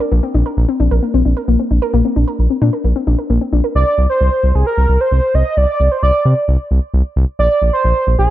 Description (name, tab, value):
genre	synth-pop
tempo	132 BPM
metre	4/4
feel	straight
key	unclear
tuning	A4 = 440 Hz
part	soft round pluck	arpeggios	0.0-3.7 s	Bb3 to Bb4	-18 LUFS	left 3 dB	chorus, slapback echo
part	round analog bass	bass	0.1-8.3 s	Bb1 to C3	-13 LUFS	equal	none
part	octave-doubled lead	melody	3.8-8.3 s	Ab4 to Eb5	-15 LUFS	right 2 dB	chorus, slapback echo
room	light reverb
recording	dark, warm production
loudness	-12 LUFS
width	side -14 dB against mid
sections	0.1-3.8 A section; 3.8-8.3 B section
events	none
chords	0.1 Bbadd9; 3.8 Csus2; 7.4 Bb9